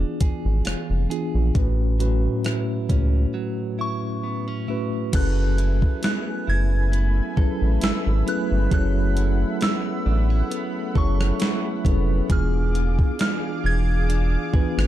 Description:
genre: contemporary R&B.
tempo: 67 BPM.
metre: 4/4.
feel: swing 54% on 16ths.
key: F# minor.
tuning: A4 = 442 Hz.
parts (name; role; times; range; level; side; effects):
mellow tine electric piano; accompaniment; 0.0-14.9 s; A2 to C#5; -27 LUFS; left 1 dB; medium stereo tremolo.
direct-recorded clean electric guitar; arpeggios; 0.0-14.9 s; A2 to A4; -33 LUFS; right 7 dB; tape echo.
round analog bass; bass; 0.0-14.9 s; E1 to C#2; -21 LUFS; equal; none.
gated 80s digital drum machine; drums; 0.2-14.9 s; crash cymbal, hi-hat, kick drum, rim click, snare drum; -23 LUFS; equal; gated reverb, gated reverb snare.
soft synth bell; melody; 3.8-14.9 s; C#6 to G#6; -32 LUFS; right 1 dB; chorus, tape echo.
lush unison pad; sustained chords; 5.1-14.9 s; A3 to D6; -33 LUFS; left 1 dB; chorus, sidechain pumping.
room: little or no reverb.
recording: dark, warm production.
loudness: -20 LUFS.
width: side -13 dB against mid.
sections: 0.0-5.1 A section; 5.1-14.9 B section.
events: break 3.3-5.1.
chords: 0.0 E7b9; 1.6 A6; 5.1 F#m11; 12.3 E7b9.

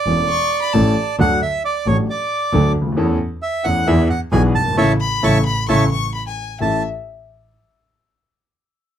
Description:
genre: tango.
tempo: 133 BPM.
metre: 4/4.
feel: rubato.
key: A major.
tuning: A4 = 439 Hz.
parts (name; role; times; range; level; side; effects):
bandoneon; melody; 0.0-6.8 s; C#5 to A5; -19 LUFS; right 3 dB; none.
warm grand piano; accompaniment; 0.1-6.8 s; E1 to A4; -18 LUFS; left 1 dB; none.
clear double bass; bass; 0.1-6.8 s; E1 to E2; -21 LUFS; right 2 dB; none.
warm violin; second line; 0.3-1.1, 5.0-6.8 s; E5 to C#6; -23 LUFS; left 6 dB; none.
room: light reverb.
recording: close, detailed microphones.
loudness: -15 LUFS.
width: side -10 dB against mid.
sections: 0.0-6.6 A section; 6.6-8.4 B section.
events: band accent 4.8-6.6.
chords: 0.0 A; 1.2 D; 3.0 A/E; 3.9 E7; 4.8 A; 6.2 N.C.; 6.6 A.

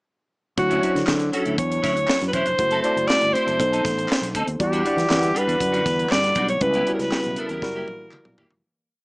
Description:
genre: polished 1980s jazz-funk pop.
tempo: 119 BPM.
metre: 4/4.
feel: straight.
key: unclear.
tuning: A4 = 440 Hz.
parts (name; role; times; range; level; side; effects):
breathy alto saxophone; melody; 0.6-8.4 s; F#4 to D5; -22 LUFS; equal; none.
tine electric piano; accompaniment; 0.6-8.7 s; F#3 to F#5; -26 LUFS; equal; analog chorus.
clean electric guitar; riff; 0.6-8.5 s; F#3 to C5; -28 LUFS; equal; ensemble chorus.
fretless electric bass; bass; 0.6-8.6 s; E1 to E3; -27 LUFS; equal; none.
tight funk drum kit; drums; 0.6-8.6 s; hi-hat, kick drum, snare drum, toms; -26 LUFS; equal; gated reverb.
group handclap; percussion; 1.1-8.2 s; none; -31 LUFS; equal; none.
hollow soft pad; sustained chords; 4.6-8.6 s; C#3 to F#5; -36 LUFS; equal; none.
room: light reverb.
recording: small speaker sound.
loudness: -19 LUFS.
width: side -36 dB against mid.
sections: 0.6-8.6 pre-chorus.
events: fade-out 6.6-8.6; drum fill 7.6-8.6.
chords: 0.6 Dmaj9; 2.6 F#m7b5; 3.6 B7b9; 4.6 Em9; 6.6 C#m7b5; 7.6 F#7b9.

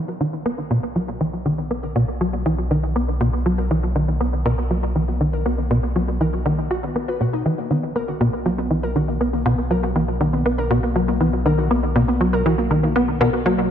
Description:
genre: ambient, sequencer-driven space music.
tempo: 120 BPM.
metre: 4/4.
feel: straight.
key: B major.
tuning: A4 = 440 Hz.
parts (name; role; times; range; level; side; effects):
tight sequencer bass; riff; 0.0-13.7 s; B2 to F#4; -20 LUFS; equal; analog chorus, analog delay.
analog drone; bass; 0.9-13.7 s; B1; -25 LUFS; equal; chorus.
warbly dusty pluck; arpeggios; 0.1-13.6 s; A#3 to B4; -26 LUFS; moving between left 7 dB and right 2 dB; chorus, auto-pan, analog delay.
room: light reverb, digital ambience.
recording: dark, warm production.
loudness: -18 LUFS.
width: side -9 dB against mid.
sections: 0.0-13.7 A section.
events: fade-in on synth arpeggio sound 0.0-13.7; filter sweep on analog synth bass 0.0-13.7.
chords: 0.0 Bmaj7.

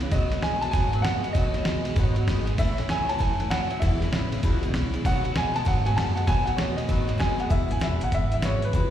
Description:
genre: rockabilly.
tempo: 195 BPM.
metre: 4/4.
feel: swing 64% on 8ths.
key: E major.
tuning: A4 = 440 Hz.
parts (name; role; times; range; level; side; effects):
picked steel-string acoustic guitar; accompaniment; 0.0-8.9 s; E2 to F#4; -32 LUFS; left 5 dB; slapback echo.
electric guitar at the edge of break-up; riff; 0.0-7.5 s; E2 to G#3; -32 LUFS; right 4 dB; ensemble chorus, slapback echo.
upright bass; bass; 0.0-8.9 s; E1 to G#2; -27 LUFS; equal; none.
dusty soul sampler-style drum kit; drums; 0.0-8.8 s; hi-hat, kick drum, ride cymbal, snare drum; -27 LUFS; equal; none.
warm upright piano; melody; 0.1-8.9 s; B4 to A5; -29 LUFS; right 1 dB; slapback echo.
room: little or no reverb.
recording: live gig heard through the venue's PA, recital hall reverb.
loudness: -22 LUFS.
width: side -11 dB against mid.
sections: 0.0-7.5 A section; 7.5-8.9 B section.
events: none.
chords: 0.1 B7; 2.6 A; 3.8 E; 5.0 B7; 7.5 E.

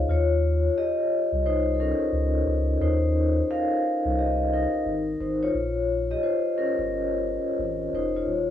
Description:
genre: lo-fi hip hop.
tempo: 88 BPM.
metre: 4/4.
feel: swing 64% on 16ths.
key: unclear.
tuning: A4 = 439 Hz.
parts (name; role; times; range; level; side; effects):
vibraphone with soft mallets; accompaniment; 0.0-8.5 s; Db4 to F5; -24 LUFS; left 2 dB; low-pass filter.
soft dub sub bass; bass; 0.0-8.5 s; Eb1 to Eb2; -26 LUFS; equal; none.
room: light reverb.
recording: small room ambience.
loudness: -22 LUFS.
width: side -10 dB against mid.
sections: 0.0-5.5 A section; 5.5-8.5 B section.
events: vibraphone solo 0.0-5.5, 5.5-8.5.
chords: 0.1 Eb13; 4.8 Absus2; 5.5 Bbm.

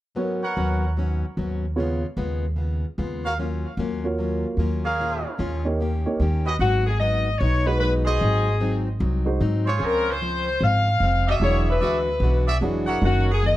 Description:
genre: jazz.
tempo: 150 BPM.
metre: 4/4.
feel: swing 64% on 8ths.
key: G# dorian.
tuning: A4 = 440 Hz.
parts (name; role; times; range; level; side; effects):
picked plugged-in steel-string acoustic guitar; accompaniment; 0.1-13.6 s; F#2 to G4; -30 LUFS; left 3 dB; none.
warm concert grand piano; accompaniment; 0.2-13.3 s; F#3 to C#5; -27 LUFS; right 2 dB; none.
clear trumpet section; stabs; 0.4-13.4 s; E#4 to F#5; -28 LUFS; right 2 dB; analog delay.
upright bass; bass; 0.6-13.6 s; E1 to G#2; -23 LUFS; equal; none.
edgy saxophone section; melody; 6.6-13.6 s; F#4 to E#5; -23 LUFS; left 3 dB; plate reverb.
room: moderate studio reverb, RT60 0.5 s.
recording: none.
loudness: -20 LUFS.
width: side -15 dB against mid.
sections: 0.2-6.6 A section; 6.6-13.6 B section.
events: none.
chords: 0.2 G#m11; 1.8 C#7; 3.4 F#maj7; 5.0 A#m7; 5.8 D#7; 6.6 G#m7; 8.2 G#7; 9.8 C#maj7; 11.4 E9; 13.0 F#6.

